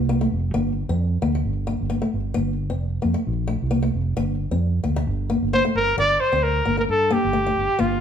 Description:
highlife guitar band; 132 BPM; 4/4; swing 54% on 16ths; G minor; A4 = 440 Hz
fingerpicked acoustic archtop guitar; accompaniment; 0.0-8.0 s; A3 to C4; -25 LUFS; left 2 dB
fingered electric bass; bass; 0.0-8.0 s; F1 to G2; -23 LUFS; right 1 dB
warm trumpet; melody; 5.5-8.0 s; F4 to D5; -19 LUFS; equal
moderate large studio reverb, RT60 1.2 s; band playing live in one room; -20 LUFS; side -8 dB against mid
0.0-6.0 A section; 6.0-8.0 B section
0.0 Gmadd9 (rootless); 0.5 Bb/G; 1.4 Gmadd9; 4.2 Bb/G; 5.1 Gmadd9
0.09 | 0.54 1.00 1.45 1.90 | 2.36 2.81 3.26 3.71 | 4.17 4.62 5.08 5.53 | 5.98 6.43 6.89 7.34 | 7.79

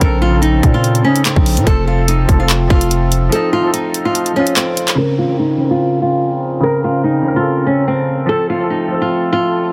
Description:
hip hop, drill; 145 BPM; 4/4; half-time; Bb harmonic minor; A4 = 440 Hz
flamenco guitar; melody; 0.0-9.7 s; C4 to Bb4; -19 LUFS; equal; low-pass filter
warm baby grand piano; accompaniment; 0.0-9.7 s; Db3 to Bb4; -21 LUFS; equal; low-pass filter
mellow French horn section; sustained chords; 0.0-9.7 s; F2 to C4; -28 LUFS; equal; low-pass filter
growling 808-style bass; bass; 0.0-3.3 s; F1 to Bb2; -17 LUFS; equal
drill drum kit; drums; 0.0-5.0 s; handclaps, hi-hat, kick drum; -17 LUFS; equal
light reverb; dense, heavily limited modern master; -15 LUFS; mono
0.0-5.0 A section; 5.0-9.7 B section
kick muted 3.3-5.0; filter sweep 5.0-9.7
0.0 Bbmadd9; 1.7 F; 5.0 Bbmadd9; 8.3 F
| 0.01 0.43 0.84 1.25 | 1.67 2.08 2.50 2.91 | 3.32 3.74 4.15 4.57 | 4.98 5.39 5.81 6.22 | 6.63 7.05 7.46 7.88 | 8.29 8.70 9.12 9.53

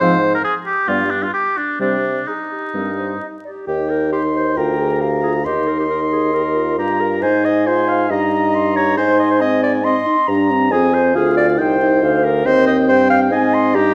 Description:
quick classical-period movement for wind quintet; 137 BPM; 4/4; rubato; C minor, Eb major from 3.7 s, C minor from 10.7 s; A4 = 440 Hz
silver concert flute; melody; 0.0-13.9 s; G4 to C6; -27 LUFS; equal
warm oboe; second line; 0.0-13.9 s; D4 to C6; -24 LUFS; equal
mellow French horn; accompaniment; 0.0-13.9 s; F3 to Ab4; -23 LUFS; equal
warm clarinet; accompaniment; 0.0-13.9 s; B3 to F5; -22 LUFS; equal
dark bassoon; bass; 0.0-13.9 s; C2 to C3; -22 LUFS; equal
moderate recital hall reverb, RT60 1.4 s; vinyl crackle; -17 LUFS; mono
0.0-3.7 A section; 3.7-13.9 B section
0.0 Fm/Ab; 0.9 G; 1.8 Cm; 3.7 Eb; 4.6 Bb7/D; 5.5 Eb; 7.2 Ab; 8.1 Eb/G; 9.0 Ab; 10.7 Fm; 11.6 Cm; 12.5 Cm/Eb; 13.3 Ab
| 0.01 0.45 0.88 1.33 | 1.80 2.27 2.75 3.21 | 3.68 4.12 4.57 5.01 | 5.46 5.90 6.34 6.78 | 7.22 7.67 8.11 8.54 | 8.98 9.42 9.85 10.29 | 10.72 11.15 11.59 12.02 | 12.46 12.89 13.32 13.75

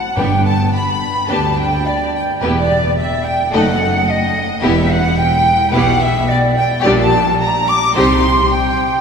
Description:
quick classical-period movement for symphony orchestra; 108 BPM; 4/4; straight; A4 = 440 Hz
clear chamber violin section; melody; 0.0-9.0 s; D5 to D6; -24 LUFS; left 4 dB
flute section; second line; 0.0-9.0 s; D5 to D6; -16 LUFS; equal
warm chamber violin section; second line; 0.2-8.2 s; G4 to D#5; -23 LUFS; left 3 dB
rich studio viola section; accompaniment; 0.2-8.2 s; G3 to E4; -21 LUFS; equal
rich chamber double bass section; bass; 0.2-8.4 s; E1 to D2; -21 LUFS; right 2 dB
rich studio cello section; bass; 0.2-8.4 s; D2 to C3; -21 LUFS; right 2 dB
timpani; percussion; 0.2-1.0 s; G2; -24 LUFS; left 2 dB
wet cathedral reverb, RT60 4.3 s; -12 LUFS; side -6 dB against mid
0.0-9.0 A section
0.2 G; 2.4 Em; 3.5 D#dim/F#; 4.6 Em; 6.8 Gm/Bb; 8.0 Cm
| 0.17 0.73 1.29 1.84 | 2.41 2.96 3.52 4.07 | 4.63 5.18 5.73 6.29 | 6.84 7.40 7.95 8.52

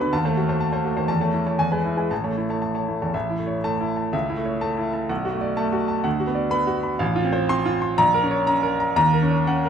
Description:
classical, virtuoso piano study; 112-128 BPM; 2/4; rubato; A major; A4 = 445 Hz
clear baby grand piano; solo; 0.0-9.7 s; A1 to C6; -20 LUFS; equal
wet large studio reverb, RT60 1.2 s; dark, warm production; -20 LUFS; side -8 dB against mid
0.0-3.1 A section; 3.1-9.7 B section
0.1 D#dim7; 1.1 A/E; 1.6 E; 2.1 A; 4.1 A/C#; 5.1 Bm7; 6.1 Bm/D; 7.0 F/A; 8.0 Bbm; 9.0 Ebm7
| 0.13 0.61 | 1.09 1.59 | 2.11 2.63 | 3.14 3.64 | 4.13 4.62 | 5.10 5.58 | 6.05 6.52 | 7.00 7.50 | 7.99 8.47 | 8.96 9.47

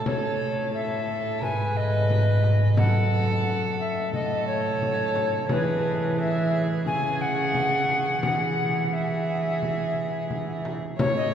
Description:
classical, renaissance-style consort dance; 88 BPM; 4/4; straight; A4 = 439 Hz
warm violin; second line; 0.0-11.3 s; G#4 to C#5; -31 LUFS; right 2 dB
alto recorder; melody; 0.1-11.3 s; B4 to G#5; -27 LUFS; left 1 dB
dark cello; bass; 0.1-11.3 s; F#2 to E3; -26 LUFS; right 1 dB
frame drum; percussion; 0.1-11.3 s; -32 LUFS; left 1 dB
wet cathedral reverb, RT60 5.8 s; heard from further back in the room; -22 LUFS; side -9 dB against mid
0.1-11.0 A section
0.1 A; 1.4 G#m; 2.8 F#m; 4.1 A; 5.5 E; 6.9 C#5; 8.2 E
| 0.06 0.75 1.43 2.10 | 2.78 3.46 4.14 4.82 | 5.49 6.18 6.85 7.54 | 8.22 8.92 9.61 10.30 | 10.99

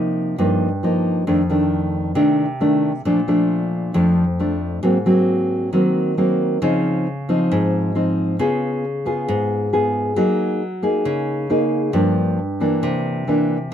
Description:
bossa nova; 135 BPM; 4/4; straight; Db major from 6.6 s; A4 = 440 Hz
nylon-string guitar; solo; 0.0-13.7 s; F2 to Ab4; -17 LUFS; equal
light reverb; -17 LUFS; side -9 dB against mid
0.0-6.6 A section; 6.6-13.7 B section
0.0 Cm7; 1.3 F6; 3.1 Bbmaj7; 4.8 Ab9; 6.6 Dbmaj9; 8.4 Db7; 10.2 Gb69; 11.9 Gm7; 12.8 C9
0.39 0.84 | 1.28 1.73 2.17 2.62 | 3.06 3.50 3.95 4.39 | 4.84 5.28 5.73 6.17 | 6.62 7.06 7.50 7.95 | 8.39 8.84 9.28 9.72 | 10.17 10.61 11.06 11.50 | 11.95 12.39 12.84 13.28 | 13.72

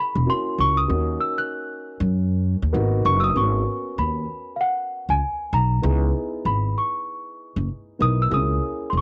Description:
hip hop; 97 BPM; 4/4; swing 59% on 16ths; G# minor; A4 = 440 Hz
small celesta; melody; 0.0-9.0 s; E#5 to F#6; -26 LUFS; equal; cassette tape
dark baby grand piano; accompaniment; 0.0-9.0 s; A#3 to A#4; -31 LUFS; equal; cassette tape
upright bass; bass; 0.2-9.0 s; E1 to F#2; -24 LUFS; equal; tube saturation
light reverb; home recording on cassette; -23 LUFS; mono
0.0-3.4 A section; 3.4-9.0 B section
celesta solo 0.0-3.4
0.0 A#m7b5; 0.9 D#m7; 2.7 G#m9; 3.4 G#m11 (rootless); 5.8 C#m7; 8.3 A#m7b5
0.27 | 0.89 1.50 2.12 2.74 | 3.36 3.98 4.60 5.21 | 5.83 6.45 7.07 7.69 | 8.31 8.93

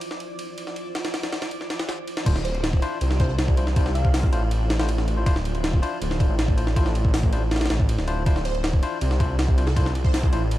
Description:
drum and bass, jungle; 160 BPM; 4/4; straight; D minor; A4 = 440 Hz
granular cloud pad; sustained chords; 0.0-10.6 s; E4 to D5; -33 LUFS; right 2 dB; built-in reverb, vintage 12-bit sampler grit
breakbeat sampler-style drum kit; drums; 0.0-10.6 s; crash cymbal, hi-hat, kick drum, ride cymbal, snare drum; -23 LUFS; equal; high-pass filter on snare, high-pass filter on cymbals, high-pass filter on hats, high-pass filter on kick
backwards swelling texture; texture; 0.0-2.3 s; D6; -44 LUFS; right 1 dB; built-in reverb
barky tine electric piano; stabs; 2.3-10.4 s; D4 to C5; -32 LUFS; left 4 dB; dub echo
detuned saw bass; bass; 2.3-10.6 s; D1 to C2; -23 LUFS; equal
plucky unison lead; melody; 2.4-4.5, 8.4-10.3 s; A4 to F5; -35 LUFS; right 2 dB; analog chorus, dub echo
digital ambience; dark, warm production; -20 LUFS; side -15 dB against mid
0.0-2.3 A section; 2.3-10.6 B section
filter sweep on ambient pad 0.0-2.3; drop 2.3-10.6
0.0 Dm9
0.01 0.39 | 0.76 1.14 1.51 1.89 | 2.26 2.64 3.01 3.39 | 3.76 4.14 4.51 4.89 | 5.26 5.64 6.01 6.39 | 6.76 7.14 7.51 7.89 | 8.26 8.64 9.01 9.39 | 9.76 10.14 10.51

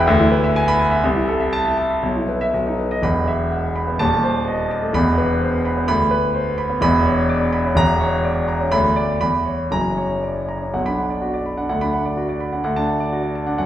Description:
classical, virtuoso piano study; 115-130 BPM; 2/4; rubato; B minor from 6.8 s; A4 = 441 Hz
warm concert grand piano; solo; 0.0-13.7 s; Eb1 to B5; -17 LUFS; equal
wet recital hall reverb, RT60 1.7 s; heard from further back in the room; -17 LUFS; side -12 dB against mid
0.0-3.0 A section; 3.0-10.7 B section; 10.7-13.7 C section
0.1 E7/D; 1.0 Am/C; 2.0 E5/B; 2.5 B; 3.0 E5; 4.0 Adim/Eb; 4.9 E5; 5.9 Bm/D; 6.8 C#m7/E; 7.8 A#dim/E; 8.7 Bm/D; 9.2 C#m7/E; 9.7 F#; 10.7 Bm; 11.7 Bm/D; 12.6 D
| 0.07 0.54 | 1.02 1.52 | 2.03 2.54 | 3.03 3.52 | 3.99 4.47 | 4.95 5.42 | 5.88 6.34 | 6.82 7.29 | 7.77 8.24 | 8.72 9.21 | 9.72 10.23 | 10.74 11.22 | 11.70 12.17 | 12.65 13.12 | 13.59

